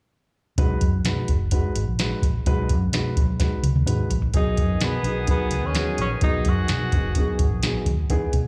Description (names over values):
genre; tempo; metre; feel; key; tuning
uptempo 1960s-style soul; 128 BPM; 4/4; straight; B major; A4 = 439 Hz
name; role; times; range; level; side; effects
dark upright piano; accompaniment; 0.6-8.3 s; E3 to B4; -31 LUFS; equal; none
vintage muted fingered electric bass; bass; 0.6-8.5 s; F#1 to B2; -27 LUFS; equal; none
soft vintage rhythm box; drums; 0.6-8.4 s; hi-hat, kick drum, snare drum, toms; -25 LUFS; equal; none
warm horn section; second line; 4.3-7.8 s; D#3 to G#4; -35 LUFS; equal; tube saturation, slapback echo
clear tenor saxophone; melody; 4.4-7.4 s; B3 to F#4; -31 LUFS; equal; none
room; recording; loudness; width
little or no reverb; live gig heard through the venue's PA, club reverb; -23 LUFS; mono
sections
0.6-4.3 A section; 4.3-8.5 B section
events
drum fill 3.4-4.3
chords
0.6 B6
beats
| 0.58 1.05 1.52 1.99 | 2.46 2.93 3.40 3.87 | 4.34 4.81 5.28 5.75 | 6.22 6.69 7.16 7.62 | 8.09